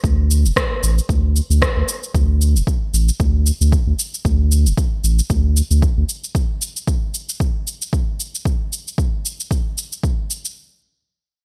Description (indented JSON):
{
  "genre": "organic downtempo",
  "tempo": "114 BPM",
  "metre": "4/4",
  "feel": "swing 56% on 16ths",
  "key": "unclear",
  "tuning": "A4 = 440 Hz",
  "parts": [
    { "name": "warm sub bass", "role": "bass", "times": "0.0-6.0 s", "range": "D1 to D2", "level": "-17 LUFS", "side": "equal", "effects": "tube saturation, sidechain pumping" },
    { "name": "electronic cabasa and rim click", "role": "drums", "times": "0.0-10.5 s", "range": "none", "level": "-25 LUFS", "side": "equal", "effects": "gated reverb" },
    { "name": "electronic kick drum", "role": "drums", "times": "0.0-10.2 s", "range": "none", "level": "-22 LUFS", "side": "equal", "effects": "none" }
  ],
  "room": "little or no reverb",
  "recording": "bright 1980s-style digital production",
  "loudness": "-19 LUFS",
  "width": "mono",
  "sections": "0.0-10.6 A section",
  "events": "none",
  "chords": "none"
}